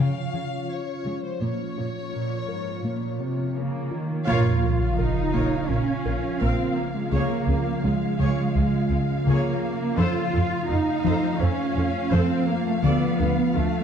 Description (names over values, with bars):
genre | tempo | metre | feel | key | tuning
cinematic, hybrid orchestral and electronic film score | 84 BPM | 4/4 | straight | unclear | A4 = 440 Hz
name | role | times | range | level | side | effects
rich chamber violin section | melody | 0.0-3.6 s | C5 to F5 | -35 LUFS | left 5 dB | none
glassy FM pad | sustained chords | 0.0-13.8 s | Db3 to F5 | -28 LUFS | equal | ensemble chorus, built-in reverb
soft round pluck | arpeggios | 0.0-13.8 s | Db3 to Db5 | -29 LUFS | left 3 dB | chorus, digital delay
warm symphonic cello section | bass | 0.0-13.8 s | Ab2 to F4 | -27 LUFS | right 3 dB | none
warm symphonic violin section | second line | 4.3-13.8 s | F5 | -33 LUFS | left 4 dB | none
rich studio viola section | accompaniment | 4.3-13.6 s | F4 to F5 | -33 LUFS | equal | none
rich studio double bass section | bass | 4.3-13.6 s | Bb1 to F2 | -26 LUFS | right 2 dB | none
sub drop | sound effects | 4.3-7.1 s | none | -28 LUFS | equal | none
room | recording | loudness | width
moderate scoring stage reverb, RT60 2.0 s | dark, warm production | -22 LUFS | side -8 dB against mid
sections
0.0-4.3 A section; 4.3-13.8 B section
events
band accent 4.3-5.0; impact 4.3-7.1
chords
0.0 Db; 1.4 Bbm; 7.1 Db; 10.0 F; 12.8 Dm